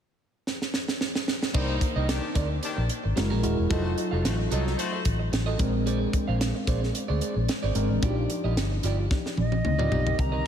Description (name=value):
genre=polished 1980s jazz-funk pop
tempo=111 BPM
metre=4/4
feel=swing 54% on 16ths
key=Eb major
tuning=A4 = 439 Hz
part: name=tight funk drum kit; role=drums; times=0.5-10.3 s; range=crash cymbal, hi-hat, kick drum, snare drum, toms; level=-29 LUFS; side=right 1 dB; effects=none
part: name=clear horn section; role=second line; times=1.5-5.0, 10.2-10.5 s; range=Eb3 to Eb5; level=-35 LUFS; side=left 4 dB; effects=none
part: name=mellow tine electric piano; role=accompaniment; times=1.5-10.5 s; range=D3 to C5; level=-31 LUFS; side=left 1 dB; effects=wide subtle chorus
part: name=electric guitar at the edge of break-up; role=riff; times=1.5-10.5 s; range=Eb4 to F5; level=-34 LUFS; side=right 6 dB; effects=lush chorus
part: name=vintage muted fingered electric bass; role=bass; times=1.5-10.4 s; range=Eb1 to D2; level=-27 LUFS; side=equal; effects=none
part: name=silver concert flute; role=melody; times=9.4-10.5 s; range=Eb5 to Bb5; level=-30 LUFS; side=right 2 dB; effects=diffuse ambient delay
room=moderate lush hall reverb, RT60 2.9 s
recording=dreamy mix soaked in reverb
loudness=-24 LUFS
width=side -9 dB against mid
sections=0.0-1.5 A section; 1.5-10.2 B section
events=drum fill 0.5-1.5, 9.1-10.2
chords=0.0 N.C.; 1.5 Cm9; 3.2 Gb9; 3.7 F7b9; 5.6 Bb9; 8.0 Ebmaj9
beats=0.46 1.00 | 1.54 2.08 2.62 3.16 | 3.70 4.24 4.78 5.33 | 5.87 6.41 6.95 7.49 | 8.03 8.57 9.11 9.65 | 10.19